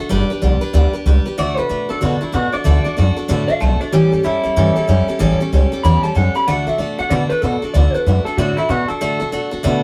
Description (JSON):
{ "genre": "rock", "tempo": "189 BPM", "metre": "4/4", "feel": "swing 62% on 8ths", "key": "D major", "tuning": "A4 = 435 Hz", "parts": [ { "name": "picked steel-string acoustic guitar", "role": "accompaniment", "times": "0.0-9.8 s", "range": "A2 to B4", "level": "-22 LUFS", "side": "equal", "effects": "none" }, { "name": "upright bass", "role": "bass", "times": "0.0-9.8 s", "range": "G1 to B2", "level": "-19 LUFS", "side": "equal", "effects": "none" }, { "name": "electric guitar through a small old amp", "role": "melody", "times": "1.4-9.5 s", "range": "E4 to B5", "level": "-22 LUFS", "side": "equal", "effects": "warbly pitch drift" } ], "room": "moderate studio reverb, RT60 0.5 s", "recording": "band playing live in one room", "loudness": "-17 LUFS", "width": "mono", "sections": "0.0-7.7 A section; 7.7-9.8 A section", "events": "none", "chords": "0.1 G; 1.4 D; 3.9 A7; 6.5 D" }